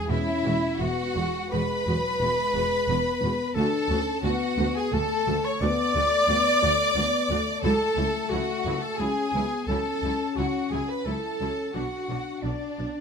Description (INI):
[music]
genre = cinematic, emotional film score for orchestra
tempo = 88 BPM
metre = 3/4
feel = rubato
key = A major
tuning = A4 = 440 Hz
[part]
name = rich studio violin section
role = melody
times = 0.0-13.0 s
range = D5 to D6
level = -35 LUFS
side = left 2 dB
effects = none
[part]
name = bright clarinet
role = second line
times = 0.0-13.0 s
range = D4 to D5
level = -31 LUFS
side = left 1 dB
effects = none
[part]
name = mellow silver concert flute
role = second line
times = 0.0-13.0 s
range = D5 to D6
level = -32 LUFS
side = left 2 dB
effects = none
[part]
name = rich studio violin section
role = second line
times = 0.0-13.0 s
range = D4 to D5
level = -28 LUFS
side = right 1 dB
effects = none
[part]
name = warm symphonic viola section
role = accompaniment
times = 0.1-12.9 s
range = F#3 to F#4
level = -35 LUFS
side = equal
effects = none
[part]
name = dark French horn section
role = sustained chords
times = 0.1-13.0 s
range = F#3 to E4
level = -32 LUFS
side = left 6 dB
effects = none
[part]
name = clear symphonic cello section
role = bass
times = 0.1-12.9 s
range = C#2 to B2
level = -32 LUFS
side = right 2 dB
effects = none
[part]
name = rich studio double bass section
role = bass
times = 0.1-12.9 s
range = E1 to D2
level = -33 LUFS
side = right 3 dB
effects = none
[sound]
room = light reverb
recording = close, detailed microphones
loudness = -23 LUFS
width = side -6 dB against mid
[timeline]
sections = 0.0-13.0 A section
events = none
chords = 0.0 Eadd9; 3.6 D; 7.6 A6/C#; 11.7 Bm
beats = 0.10 0.80 | 1.52 2.21 2.89 | 3.56 4.24 4.93 | 5.61 6.28 6.96 | 7.64 8.31 8.99 | 9.68 10.37 11.06 | 11.75 12.44